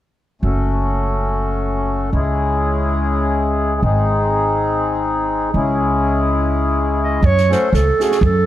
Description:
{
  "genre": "balkan folk, Balkan wedding band",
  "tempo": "free time",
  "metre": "none",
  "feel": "none",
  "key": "F# dorian sharp4",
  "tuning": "A4 = 440 Hz",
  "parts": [
    { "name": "mellow accordion", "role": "accompaniment", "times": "0.4-8.2 s", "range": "G#3 to A4", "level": "-18 LUFS", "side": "left 3 dB", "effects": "none" },
    { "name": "upright bass", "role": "bass", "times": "0.4-8.5 s", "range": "F#1 to F#2", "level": "-19 LUFS", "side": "right 1 dB", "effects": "none" },
    { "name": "dark clarinet", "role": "melody", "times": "7.0-8.5 s", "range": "G#4 to D#5", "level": "-16 LUFS", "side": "right 3 dB", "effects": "none" },
    { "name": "compact cocktail drum kit", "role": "percussion", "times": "7.2-8.3 s", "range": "kick drum, snare drum", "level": "-21 LUFS", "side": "right 2 dB", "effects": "none" }
  ],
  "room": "moderate recital hall reverb, RT60 1.8 s",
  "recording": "none",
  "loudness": "-15 LUFS",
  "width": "side -13 dB against mid",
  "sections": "0.4-7.2 A section; 7.2-8.5 B section",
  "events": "none",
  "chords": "0.4 F#m; 2.1 C#m; 3.8 G#; 5.5 C#m; 7.2 F#m",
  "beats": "free time"
}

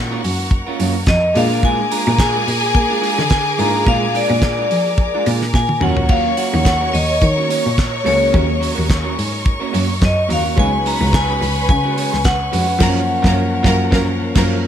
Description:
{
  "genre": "disco",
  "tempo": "107 BPM",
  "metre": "4/4",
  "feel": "swing 56% on 16ths",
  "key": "F# major",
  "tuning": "A4 = 440 Hz",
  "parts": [
    { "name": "warm studio string section", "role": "second line", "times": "0.0-14.5 s", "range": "F#4 to C#6", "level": "-24 LUFS", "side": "right 1 dB", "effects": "none" },
    { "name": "clear baby grand piano", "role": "accompaniment", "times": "0.0-14.7 s", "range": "E#3 to E#5", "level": "-25 LUFS", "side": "left 2 dB", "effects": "none" },
    { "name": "rich studio string section", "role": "sustained chords", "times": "0.0-14.7 s", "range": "A#4 to D6", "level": "-27 LUFS", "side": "left 2 dB", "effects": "none" },
    { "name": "clean electric guitar", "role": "accompaniment", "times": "0.1-14.5 s", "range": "F#3 to C#5", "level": "-25 LUFS", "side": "right 8 dB", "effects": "spring reverb" },
    { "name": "rich cello", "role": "bass", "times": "0.2-14.5 s", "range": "C#2 to A#3", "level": "-20 LUFS", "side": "equal", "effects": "none" },
    { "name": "damped 70s drum kit", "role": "drums", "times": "0.2-14.5 s", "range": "crash cymbal, handclaps, hi-hat, kick drum, snare drum, toms", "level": "-19 LUFS", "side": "equal", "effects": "none" },
    { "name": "vibraphone with medium hard mallets", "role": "melody", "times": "1.1-13.9 s", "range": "C#5 to A#5", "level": "-19 LUFS", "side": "left 2 dB", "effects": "none" }
  ],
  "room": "small room ambience",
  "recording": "none",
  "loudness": "-14 LUFS",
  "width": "side -9 dB against mid",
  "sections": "0.0-14.7 A section",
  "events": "drum fill 5.5-6.1; band accent 12.8-14.7",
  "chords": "0.0 F#maj7; 1.3 A#7; 5.8 D#m7; 10.6 C#7sus4; 12.8 F#maj7",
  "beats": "0.51 1.07 | 1.63 2.19 2.75 3.30 | 3.86 4.42 4.98 5.54 | 6.10 6.66 7.22 7.78 | 8.33 8.89 9.45 10.01 | 10.57 11.13 11.69 12.24 | 12.80 13.36 13.92 14.48"
}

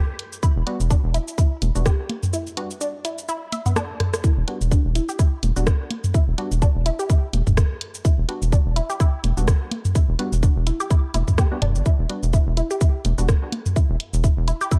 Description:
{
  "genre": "minimal techno",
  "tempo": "126 BPM",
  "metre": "4/4",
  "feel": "swing 56% on 16ths",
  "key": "E minor",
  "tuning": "A4 = 440 Hz",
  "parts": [
    { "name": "punchy analog drum machine", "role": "drums", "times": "0.2-14.8 s", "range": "hi-hat, rim click, shaker", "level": "-32 LUFS", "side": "equal", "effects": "none" },
    { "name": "resonant blip pluck", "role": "riff", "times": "0.4-14.8 s", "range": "B3 to E5", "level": "-32 LUFS", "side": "equal", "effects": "phaser, sidechain pumping, dub echo" },
    { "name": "electronic kick drum", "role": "drums", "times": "0.4-14.8 s", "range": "none", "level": "-20 LUFS", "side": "equal", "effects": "none" },
    { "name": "rubbery square bass", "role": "bass", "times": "0.6-14.5 s", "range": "E1 to G1", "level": "-24 LUFS", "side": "equal", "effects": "sidechain pumping" },
    { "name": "wavetable chord stab", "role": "stabs", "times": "0.7-13.3 s", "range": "G3 to F#4", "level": "-34 LUFS", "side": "equal", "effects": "digital delay" },
    { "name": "electronic congas and toms", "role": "percussion", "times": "1.6-13.7 s", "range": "none", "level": "-27 LUFS", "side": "equal", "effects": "none" }
  ],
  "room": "digital ambience",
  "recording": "dark, warm production",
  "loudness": "-21 LUFS",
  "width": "mono",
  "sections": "0.0-14.8 A section",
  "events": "break 2.3-4.2; drum fill 4.0",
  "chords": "0.0 Em",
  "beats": "| 0.43 0.91 1.38 1.86 | 2.33 2.81 3.29 3.76 | 4.24 4.71 5.19 5.67 | 6.14 6.62 7.09 7.57 | 8.05 8.52 9.00 9.48 | 9.95 10.43 10.90 11.38 | 11.86 12.33 12.81 13.29 | 13.76 14.24 14.71"
}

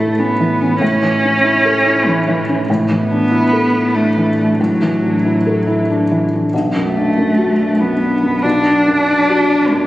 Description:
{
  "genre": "neoclassical piano and strings",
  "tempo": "95 BPM",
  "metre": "3/4",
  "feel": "rubato",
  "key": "B minor",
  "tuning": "A4 = 437 Hz",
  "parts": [
    { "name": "warm cello", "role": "second line", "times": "0.0-9.9 s", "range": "E3 to D4", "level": "-15 LUFS", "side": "right 1 dB", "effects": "tape echo" },
    { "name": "felt-muted upright piano", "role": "accompaniment", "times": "0.0-9.9 s", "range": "B1 to A4", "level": "-16 LUFS", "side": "left 1 dB", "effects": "none" },
    { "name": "warm double bass", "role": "bass", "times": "0.0-9.9 s", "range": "A1 to B1", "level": "-24 LUFS", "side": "equal", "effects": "none" }
  ],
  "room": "moderate scoring stage reverb, RT60 1.7 s",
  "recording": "recorded on a phone in the room, studio reverb",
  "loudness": "-12 LUFS",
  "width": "side -16 dB against mid",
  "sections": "0.0-9.9 A section",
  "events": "none",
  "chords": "0.0 A; 2.7 Dadd9/A; 6.5 Bm",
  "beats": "0.18 | 0.81 1.44 2.06 | 2.69 3.31 3.94 | 4.59 5.23 5.88 | 6.53 7.17 7.80 | 8.44 9.07 9.70"
}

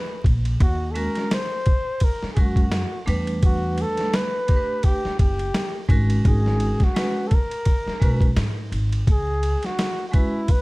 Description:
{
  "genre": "hip hop, jazz-hop",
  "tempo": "85 BPM",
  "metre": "4/4",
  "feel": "swing 57% on 16ths",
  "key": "unclear",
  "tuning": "A4 = 441 Hz",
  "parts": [
    { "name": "breathy flugelhorn", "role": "melody", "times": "0.0-10.6 s", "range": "Fb4 to C5", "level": "-27 LUFS", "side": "equal", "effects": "plate reverb" },
    { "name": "upright bass", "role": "bass", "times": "0.2-9.5 s", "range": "F#1 to Ab2", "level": "-23 LUFS", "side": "equal", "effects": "none" },
    { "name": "boom bap sampler-style drum kit", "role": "drums", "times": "0.2-10.6 s", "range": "hi-hat, kick drum, ride cymbal, snare drum", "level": "-21 LUFS", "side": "equal", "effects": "none" },
    { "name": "vibraphone with hard mallets", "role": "accompaniment", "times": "0.9-10.4 s", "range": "G3 to B4", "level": "-27 LUFS", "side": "right 1 dB", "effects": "none" }
  ],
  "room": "light reverb",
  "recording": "dark, warm production, vinyl crackle",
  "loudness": "-19 LUFS",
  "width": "side -23 dB against mid",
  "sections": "0.0-10.6 A section",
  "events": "none",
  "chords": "0.0 N.C.; 0.6 Ebm7; 3.1 Em7; 5.9 Abm9; 9.1 Dbm7",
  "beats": "| 0.61 1.31 2.02 2.72 | 3.43 4.14 4.84 5.55 | 6.25 6.96 7.67 8.37 | 9.08 9.78 10.49"
}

